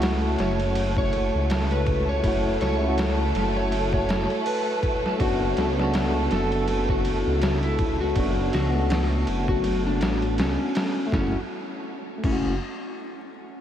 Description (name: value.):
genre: trip hop.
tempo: 81 BPM.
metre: 4/4.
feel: swing 57% on 16ths.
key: F# minor.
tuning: A4 = 439 Hz.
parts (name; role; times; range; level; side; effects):
tine electric piano; accompaniment; 0.0-12.6 s; A3 to F#4; -29 LUFS; equal; tremolo, vintage 12-bit sampler grit, tape echo.
warm studio violin section; sustained chords; 0.0-11.1 s; A3 to A4; -31 LUFS; right 2 dB; none.
dark detuned saw bass; bass; 0.0-12.6 s; F#1 to C#2; -26 LUFS; equal; none.
trip hop sampler-style drum kit; drums; 0.0-12.4 s; crash cymbal, hi-hat, kick drum, ride cymbal, snare drum; -28 LUFS; equal; none.
wind-like tuned noise texture; texture; 0.2-11.1 s; E4 to C#5; -39 LUFS; left 1 dB; none.
electric slide guitar; melody; 0.4-12.5 s; C#4 to C#5; -29 LUFS; left 2 dB; tape echo.
room: moderate huge ambient reverb, RT60 7.5 s.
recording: dreamy mix soaked in reverb, vinyl crackle.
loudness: -21 LUFS.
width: side -10 dB against mid.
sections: 0.0-11.1 A section; 11.1-13.6 B section.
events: none.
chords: 0.0 F#m7; 5.2 D6/F#; 11.1 F#m7.